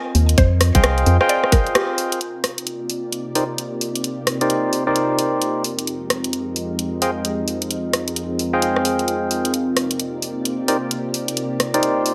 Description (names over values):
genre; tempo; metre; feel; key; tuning
UK garage, two-step garage; 131 BPM; 4/4; swing 62% on 16ths; C minor; A4 = 440 Hz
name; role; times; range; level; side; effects
mallet-like synth pluck; melody; 0.0-2.0 s; G4 to Ab5; -27 LUFS; equal; chorus, digital delay
warbly tape-like pad; texture; 0.0-12.1 s; C4 to Eb5; -29 LUFS; equal; chorus, built-in reverb, sidechain pumping
organ-like FM bass; bass; 0.1-1.2 s; C2 to F2; -18 LUFS; equal; none
garage drum kit; drums; 0.1-12.1 s; hi-hat, rim click; -24 LUFS; equal; overdrive, small room ambience
electronic kick drum; drums; 0.4-1.6 s; none; -18 LUFS; equal; overdrive, small room ambience
percussive organ stab; stabs; 0.7-12.1 s; Eb4 to G5; -23 LUFS; equal; chorus, dub echo
soft string machine; sustained chords; 2.6-12.1 s; F2 to D5; -31 LUFS; equal; ensemble chorus, sidechain pumping
room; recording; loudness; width
moderate digital room reverb, RT60 1.1 s, digital ambience; none; -20 LUFS; mono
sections
0.0-2.2 A section; 2.2-12.1 B section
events
break 1.8-2.2; band accent 1.8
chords
0.0 Fm9; 2.2 Cm9; 5.6 Fm9; 9.5 Cm9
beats
| 0.38 0.83 1.29 1.75 | 2.21 2.67 3.12 3.58 | 4.04 4.50 4.96 5.42 | 5.87 6.33 6.79 7.25 | 7.71 8.16 8.62 9.08 | 9.54 10.00 10.45 10.91 | 11.37 11.83